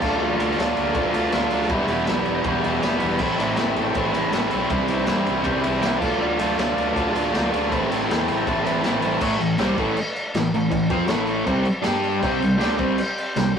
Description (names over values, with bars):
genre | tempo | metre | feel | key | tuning
garage rock duo or trio | 160 BPM | 4/4 | straight | A minor | A4 = 440 Hz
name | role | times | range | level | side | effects
combo organ | sustained chords | 0.0-9.2, 12.2-13.6 s | G4 to A5 | -31 LUFS | left 1 dB | none
overdriven electric guitar | riff | 0.0-13.6 s | E2 to G4 | -21 LUFS | equal | none
fuzz fingered electric bass | bass | 0.0-13.6 s | E1 to G2 | -31 LUFS | equal | overdrive, tube saturation
crunchy breakbeat drum kit | drums | 0.0-13.6 s | crash cymbal, kick drum, ride cymbal, snare drum | -26 LUFS | equal | none
room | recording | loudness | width
moderate stone room reverb, RT60 1.2 s | rough rehearsal-room recording | -19 LUFS | side -7 dB against mid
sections
0.0-9.2 A section; 9.2-13.6 B section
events
transistor combo organ fill 0.0, 5.5-6.2, 8.1-9.2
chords
0.0 Dm; 1.7 Em; 3.2 Am; 4.7 C; 6.0 Dm; 7.7 Am; 11.9 G5; 12.2 C5